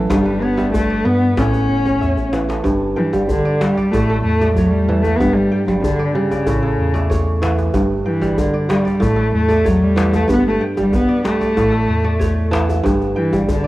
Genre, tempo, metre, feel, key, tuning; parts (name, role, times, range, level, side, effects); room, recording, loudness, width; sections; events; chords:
west african traditional, West African string and xylophone music; 94 BPM; 4/4; straight; G lydian; A4 = 440 Hz
dark cello; melody; 0.0-13.7 s; C#3 to C#4; -18 LUFS; equal; cassette tape
kora; arpeggios; 0.0-13.7 s; G2 to A5; -19 LUFS; right 1 dB; cassette tape
pure sine sub bass; bass; 0.0-13.6 s; F#1 to G2; -22 LUFS; equal
djembe; percussion; 0.1-13.7 s; -23 LUFS; left 1 dB
light reverb, small room ambience; home recording on cassette; -14 LUFS; side -17 dB against mid
0.0-2.7 A section; 2.7-13.7 B section
drum fill 1.9-2.7
0.1 G; 1.4 A; 2.7 G5; 3.9 A; 5.2 G5; 6.5 A; 7.7 G5; 9.0 A; 10.3 G5; 11.6 A; 12.8 G5